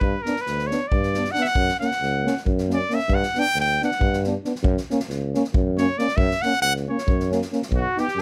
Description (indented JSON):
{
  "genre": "balkan folk, Balkan brass band",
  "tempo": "273 BPM (eighths)",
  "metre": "7/8",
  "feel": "straight",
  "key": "F# phrygian dominant",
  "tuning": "A4 = 440 Hz",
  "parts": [
    { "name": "bright trumpet", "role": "melody", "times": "0.0-8.2 s", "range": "F#4 to G5", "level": "-26 LUFS", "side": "equal", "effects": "none" },
    { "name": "clear tuba", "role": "bass", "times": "0.0-8.2 s", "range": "B1 to G2", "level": "-27 LUFS", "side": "equal", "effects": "none" },
    { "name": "unplugged drum kit", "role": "percussion", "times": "0.0-8.2 s", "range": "kick drum, snare drum", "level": "-28 LUFS", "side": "equal", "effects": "none" },
    { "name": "mellow euphonium", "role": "accompaniment", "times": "0.3-8.1 s", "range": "A#3 to B3", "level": "-30 LUFS", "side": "equal", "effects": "none" },
    { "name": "mellow trombone", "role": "accompaniment", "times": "0.3-8.0 s", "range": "C#4 to D#4", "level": "-28 LUFS", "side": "equal", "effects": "none" },
    { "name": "warm flugelhorn", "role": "second line", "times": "7.8-8.2 s", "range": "F#4 to A4", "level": "-29 LUFS", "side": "equal", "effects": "none" }
  ],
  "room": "little or no reverb",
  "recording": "none",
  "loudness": "-22 LUFS",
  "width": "mono",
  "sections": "0.0-7.7 A section",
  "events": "trumpet solo 0.0-7.7",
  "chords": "0.0 G; 1.6 F#; 3.1 G; 4.6 F#"
}